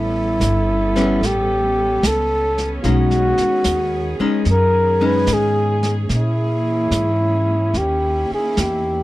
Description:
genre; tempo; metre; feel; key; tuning
jazz ballad; 74 BPM; 4/4; swing 67% on 8ths; unclear; A4 = 438 Hz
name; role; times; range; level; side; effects
breathy flugelhorn; melody; 0.0-9.0 s; E4 to B4; -19 LUFS; equal; none
warm chamber string section; sustained chords; 0.0-9.0 s; D#3 to A4; -26 LUFS; right 3 dB; none
upright bass; bass; 0.0-9.0 s; G1 to A#2; -21 LUFS; equal; none
vintage brush drum kit; drums; 0.4-9.0 s; brushed snare drum, hi-hat, snare drum; -24 LUFS; right 1 dB; none
archtop guitar, miked and amplified; accompaniment; 1.0-6.1 s; G3 to D#4; -21 LUFS; left 4 dB; none
room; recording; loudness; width
light reverb; dry, close 1970s-style studio recording; -16 LUFS; side -16 dB against mid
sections
0.0-9.0 A section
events
none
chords
0.0 A9; 2.8 B69; 6.1 A#m7b5; 7.7 D#5

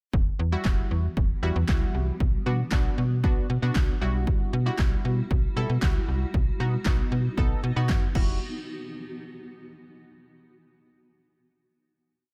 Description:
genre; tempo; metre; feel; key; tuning
dance-pop; 116 BPM; 4/4; straight; E minor; A4 = 441 Hz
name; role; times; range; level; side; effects
granular cloud pad; sustained chords; 1.1-8.4 s; E3 to F#4; -41 LUFS; equal; built-in reverb, sidechain pumping
slap-like FM bass; bass; 0.1-8.4 s; E1 to B2; -28 LUFS; equal; sidechain pumping
punchy analog drum machine; drums; 0.1-8.3 s; crash cymbal, handclaps, kick drum, snare drum; -28 LUFS; equal; none
funky polysynth comp; accompaniment; 0.5-8.4 s; G3 to A4; -35 LUFS; equal; chorus, sidechain pumping
room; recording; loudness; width
little or no reverb; none; -25 LUFS; mono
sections
0.1-8.4 verse; 8.4-10.5 final hit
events
none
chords
0.1 Emadd9; 2.2 Bm; 4.0 Emadd9/B; 6.3 B; 8.2 Emadd9; 8.4 N.C.

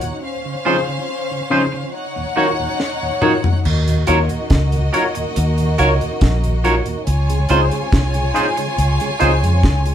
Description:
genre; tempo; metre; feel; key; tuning
lovers rock reggae; 70 BPM; 4/4; straight; Eb dorian; A4 = 440 Hz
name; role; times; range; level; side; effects
warm studio violin section; second line; 0.0-9.9 s; Bb3 to Ab5; -23 LUFS; left 2 dB; none
mellow tonewheel organ; accompaniment; 0.0-9.9 s; Eb2 to F4; -27 LUFS; right 3 dB; slow rotary speaker, tape echo
deep reggae drum kit; drums; 0.0-9.9 s; crash cymbal, hi-hat, kick drum, snare drum, toms; -19 LUFS; equal; none
barky tine electric piano; accompaniment; 0.7-9.3 s; Db3 to Db5; -19 LUFS; left 2 dB; phaser
twangy electric guitar; stabs; 0.7-9.3 s; Db4 to Db5; -19 LUFS; right 4 dB; none
vintage muted fingered electric bass; bass; 3.7-9.9 s; Bb1 to F2; -17 LUFS; equal; none
room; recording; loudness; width
wet studio ambience, RT60 0.5 s; band playing live in one room; -15 LUFS; side -10 dB against mid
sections
0.0-3.6 A section; 3.6-9.9 A section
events
drum fill 2.8-3.6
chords
0.2 Dbmaj7; 1.9 Ebm7; 7.1 Dbmaj7

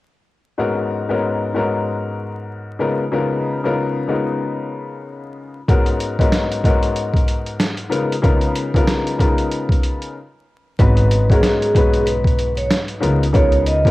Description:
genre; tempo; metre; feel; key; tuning
hip hop, boom-bap hip-hop; 94 BPM; 4/4; swing 58% on 16ths; G# dorian; A4 = 440 Hz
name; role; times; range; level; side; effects
dark upright piano; accompaniment; 0.6-13.9 s; G#2 to B4; -20 LUFS; left 2 dB; cassette tape
boom bap sampler-style drum kit; drums; 5.7-13.9 s; hi-hat, kick drum, snare drum; -17 LUFS; equal; cassette tape
vibraphone with medium mallets; melody; 10.8-13.9 s; G#4 to D#5; -20 LUFS; right 1 dB; cassette tape
upright bass; bass; 10.8-13.9 s; G#1 to C#2; -18 LUFS; equal; none
room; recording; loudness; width
light reverb, studio ambience; home recording on cassette, vinyl crackle; -16 LUFS; side -18 dB against mid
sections
0.6-10.8 A section; 10.8-13.9 B section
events
break 10.2-10.8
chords
0.6 G#m11; 2.8 C#13; 5.7 G#m11; 7.9 C#13; 10.8 G#m11; 13.0 C#13

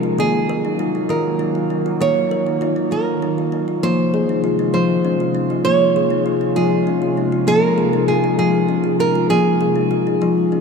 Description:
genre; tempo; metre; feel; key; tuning
world meditative, meditative tuned percussion; 66 BPM (dotted quarters); 6/8; straight; unclear; A4 = 441 Hz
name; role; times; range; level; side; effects
nylon-string guitar; melody; 0.0-10.6 s; Ab4 to Db5; -20 LUFS; right 4 dB; none
warbly tape-like pad; sustained chords; 0.0-10.6 s; C3 to F4; -25 LUFS; equal; chorus, built-in reverb
kalimba; arpeggios; 0.0-10.6 s; Eb3 to Bb4; -18 LUFS; left 2 dB; ping-pong delay
room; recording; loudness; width
wet cathedral reverb, RT60 6.7 s; dark, warm production; -15 LUFS; side -5 dB against mid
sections
0.0-10.6 A section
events
none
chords
0.2 Ebm; 3.8 Fm

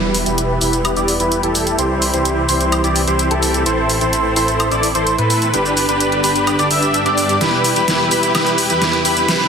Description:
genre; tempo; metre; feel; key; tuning
EDM, festival progressive house; 128 BPM; 4/4; straight; unclear; A4 = 440 Hz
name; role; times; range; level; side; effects
muted studio string section; sustained chords; 0.0-9.5 s; D3 to C4; -25 LUFS; left 2 dB; none
wide unison lead; arpeggios; 0.0-9.5 s; A5 to E6; -20 LUFS; equal; ping-pong delay
dense compressed supersaw; riff; 0.0-9.5 s; D4 to E5; -18 LUFS; right 1 dB; low-pass filter, ping-pong delay
wide detuned saw bass; bass; 0.0-9.5 s; E1 to A2; -23 LUFS; equal; chorus
pop drum kit; drums; 0.1-9.4 s; hi-hat, shaker, snare drum, woodblock; -20 LUFS; equal; overdrive
riser; sound effects; 8.7-9.5 s; none; -28 LUFS; right 3 dB; none
room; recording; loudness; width
wet lush hall reverb, RT60 2.2 s; dense, heavily limited modern master, high-pass filter; -13 LUFS; side -6 dB against mid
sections
0.0-9.5 A section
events
build-up 0.0-9.5; filter sweep on supersaw synth 0.0-9.5; filter sweep on analog synth lead 0.0-9.5; drum fill 7.4-9.5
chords
0.0 Em; 1.8 C; 3.7 Am; 5.5 G; 7.4 Em

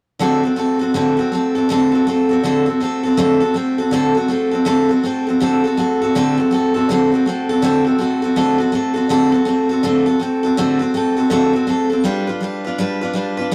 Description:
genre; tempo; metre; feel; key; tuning
rock; 163 BPM; 4/4; swing 63% on 8ths; D mixolydian; A4 = 439 Hz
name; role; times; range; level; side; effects
picked steel-string acoustic guitar; solo; 0.2-13.5 s; D3 to B4; -17 LUFS; equal; none
room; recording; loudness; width
moderate stone room reverb, RT60 1.0 s; rough rehearsal-room recording, tube saturation; -17 LUFS; mono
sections
0.2-6.1 A section; 6.1-13.5 B section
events
none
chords
0.2 D7; 12.0 G7

